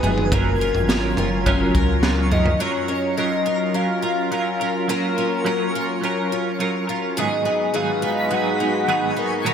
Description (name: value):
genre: dream pop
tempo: 105 BPM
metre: 4/4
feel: straight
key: F# major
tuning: A4 = 440 Hz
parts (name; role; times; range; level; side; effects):
- warm velvety synth lead; melody; 0.0-9.5 s; A#4 to F#5; -25 LUFS; left 1 dB; chorus, tremolo, digital delay
- clean electric guitar; accompaniment; 0.0-9.5 s; G#2 to A#4; -25 LUFS; right 4 dB; tremolo, ensemble chorus
- lush unison pad; sustained chords; 0.0-9.5 s; F#3 to B4; -26 LUFS; left 1 dB; chorus
- picked twelve-string acoustic guitar; arpeggios; 0.0-9.5 s; G#2 to A#4; -26 LUFS; left 2 dB; wide subtle chorus, digital delay
- warm sub bass; bass; 0.0-2.6 s; E#1 to C#2; -24 LUFS; equal; none
- raw garage drum kit; drums; 0.0-2.6 s; kick drum, snare drum, toms; -22 LUFS; equal; gated reverb
- twinkling granular texture; texture; 0.0-9.5 s; G#5 to B6; -33 LUFS; right 1 dB; built-in reverb, digital delay
room: moderate plate reverb, RT60 3.1 s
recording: bright 1980s-style digital production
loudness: -18 LUFS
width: side -8 dB against mid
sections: 0.0-2.6 A section; 2.6-9.5 B section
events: none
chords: 0.3 F#maj7; 7.2 G#m7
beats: | 0.31 0.88 1.46 2.03 | 2.60 3.17 3.74 4.31 | 4.88 5.46 6.03 6.60 | 7.17 7.74 8.31 8.88 | 9.46